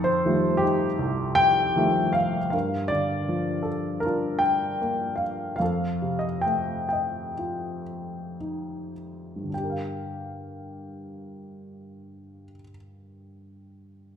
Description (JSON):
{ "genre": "classical, lyrical solo piano", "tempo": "50-84 BPM", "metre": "4/4", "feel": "rubato", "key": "G minor", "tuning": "A4 = 440 Hz", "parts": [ { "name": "warm grand piano", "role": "solo", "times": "0.0-14.2 s", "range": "C2 to G5", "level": "-24 LUFS", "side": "left 1 dB", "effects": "none" } ], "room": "wet recital hall reverb, RT60 1.5 s", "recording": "recorded in a church or concert hall", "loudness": "-23 LUFS", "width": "side -8 dB against mid", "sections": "0.0-2.5 A section; 2.5-9.5 B section; 9.5-14.2 C section", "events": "slowing down 2.5-9.5", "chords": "0.0 F9; 2.5 Gm7; 5.6 F9; 9.5 Gm7", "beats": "0.26 1.00 1.77 | 2.54 3.29 4.05 4.82 | 5.61 6.46 7.37 8.39 | 9.53 10.70 11.86 13.01" }